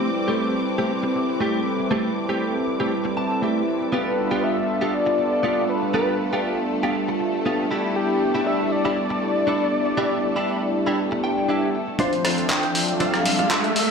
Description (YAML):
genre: nu-disco, nu disco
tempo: 119 BPM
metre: 4/4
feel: straight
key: D dorian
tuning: A4 = 441 Hz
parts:
  - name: warm analog pad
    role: accompaniment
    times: 0.0-13.4 s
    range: F3 to E5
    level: -24 LUFS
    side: equal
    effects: chorus, sidechain pumping, ping-pong delay
  - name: muted symphonic violin section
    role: sustained chords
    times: 0.0-13.9 s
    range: A3 to D6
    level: -31 LUFS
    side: left 1 dB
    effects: sidechain pumping, low-pass filter
  - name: direct-recorded clean electric guitar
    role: riff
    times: 0.0-13.7 s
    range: A3 to A5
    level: -26 LUFS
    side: right 1 dB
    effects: ensemble chorus, low-pass filter, ping-pong delay
  - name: wide unison lead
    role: melody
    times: 3.9-13.9 s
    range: G4 to G5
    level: -25 LUFS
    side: left 2 dB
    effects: dub echo
  - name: dusty soul sampler-style drum kit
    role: drums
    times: 12.0-13.9 s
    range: handclaps, hi-hat, rim click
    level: -23 LUFS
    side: equal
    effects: overdrive, high-pass filter on hats, high-pass filter on snare, high-pass filter on room
  - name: kick drum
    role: drums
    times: 12.0-13.6 s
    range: none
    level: -28 LUFS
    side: equal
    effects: high-pass filter on kick, high-pass filter on snare, high-pass filter on room
  - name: riser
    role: sound effects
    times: 12.4-13.9 s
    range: none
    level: -26 LUFS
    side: right 2 dB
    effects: none
room: moderate plate reverb, RT60 2.1 s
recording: played on a big sound system in a bare room, large studio reverb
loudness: -20 LUFS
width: side -5 dB against mid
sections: 0.0-12.0 A section; 12.0-13.9 B section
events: filter sweep on clean electric guitar 0.0-12.0, 12.0-13.9; clean electric guitar fill 2.9-3.9, 11.0-12.0; build-up 12.0-13.9; riser 12.4-13.9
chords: 0.0 Am7; 3.9 G7; 7.7 Em7; 12.0 Dm7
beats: 0.40 0.90 1.41 | 1.91 2.42 2.92 3.42 | 3.93 4.43 4.94 5.44 | 5.94 6.45 6.95 7.46 | 7.96 8.46 8.97 9.47 | 9.98 10.48 10.99 11.49 | 11.99 12.50 13.00 13.51